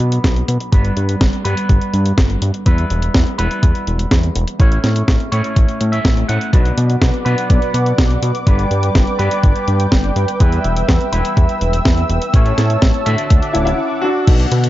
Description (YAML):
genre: italo disco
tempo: 124 BPM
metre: 4/4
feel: straight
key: E dorian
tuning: A4 = 439 Hz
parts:
  - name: electric guitar with an envelope filter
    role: stabs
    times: 0.0-13.8 s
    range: G2 to F#5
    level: -22 LUFS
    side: equal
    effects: spring reverb, digital delay
  - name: fat analog bass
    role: bass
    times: 0.0-14.7 s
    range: D1 to B2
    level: -17 LUFS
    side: equal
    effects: none
  - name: clean 12-bit digital drum machine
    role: drums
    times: 0.0-14.7 s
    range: crash cymbal, hi-hat, snare drum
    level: -22 LUFS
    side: equal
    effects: none
  - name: electronic kick drum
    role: drums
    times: 0.2-14.4 s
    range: none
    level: -13 LUFS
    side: equal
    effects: none
  - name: warm analog pad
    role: sustained chords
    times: 6.5-14.7 s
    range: D3 to E6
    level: -21 LUFS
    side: equal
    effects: chorus
  - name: clear grand piano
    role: melody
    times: 13.5-14.5 s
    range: C#4 to F#4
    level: -17 LUFS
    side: left 1 dB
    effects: ping-pong delay
room: little or no reverb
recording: dark, warm production, nothing above 7.6 kHz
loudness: -13 LUFS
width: side -15 dB against mid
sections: 0.0-14.3 A section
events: break 13.8-14.3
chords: 0.0 Bm; 0.7 G; 2.7 Em; 4.6 A; 6.5 Bm; 8.5 G; 10.4 Em; 12.3 A; 13.3 Dadd9